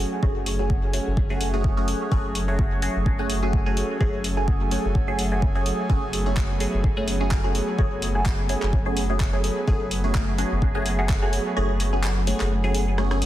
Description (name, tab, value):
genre	dub techno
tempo	127 BPM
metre	4/4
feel	swing 55% on 16ths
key	F# minor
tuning	A4 = 440 Hz
part	airy breathy pad	sustained chords	0.0-13.3 s	F#3 to G#4	-30 LUFS	right 1 dB	chorus, sidechain pumping
part	filtered dub chord stab	stabs	0.0-13.2 s	A3 to G#4	-27 LUFS	equal	phaser, sidechain pumping, dub echo
part	soft dub sub bass	bass	0.0-13.3 s	E1 to F#1	-26 LUFS	equal	tube saturation, sidechain pumping
part	electronic kick drum	drums	0.2-11.2 s	none	-24 LUFS	equal	none
part	deep house drum kit	drums	0.5-13.3 s	handclaps, hi-hat, rim click	-32 LUFS	equal	none
room	light reverb, digital ambience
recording	dense, heavily limited modern master, vinyl crackle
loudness	-21 LUFS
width	side -13 dB against mid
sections	0.0-13.3 A section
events	kick drops out 11.6-13.3; drum fill 13.0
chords	0.0 F#madd9